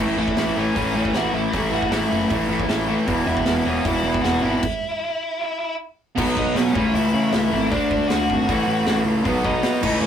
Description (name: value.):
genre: punk rock.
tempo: 155 BPM.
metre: 4/4.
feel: straight.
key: unclear.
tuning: A4 = 438 Hz.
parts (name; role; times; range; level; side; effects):
crunchy overdriven guitar; riff; 0.0-10.1 s; E2 to D4; -24 LUFS; left 4 dB; none.
distorted electric guitar; riff; 0.0-10.1 s; E2 to D4; -23 LUFS; right 2 dB; distortion.
fuzz picked electric bass; bass; 0.0-10.1 s; E1 to C#3; -26 LUFS; right 1 dB; overdrive.
big rock drum kit; drums; 0.0-9.9 s; crash cymbal, hi-hat, kick drum, snare drum; -27 LUFS; right 1 dB; none.
biting lead guitar; melody; 0.2-10.1 s; C#4 to F#5; -25 LUFS; equal; overdrive.
room: light reverb.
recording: rough rehearsal-room recording.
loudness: -18 LUFS.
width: side -9 dB against mid.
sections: 0.0-6.2 A section; 6.2-10.1 B section.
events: stop 4.6-6.2.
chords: 0.0 A; 3.1 E5; 4.6 N.C.; 6.2 B; 6.8 A/C#; 7.7 D; 8.5 A; 9.3 B.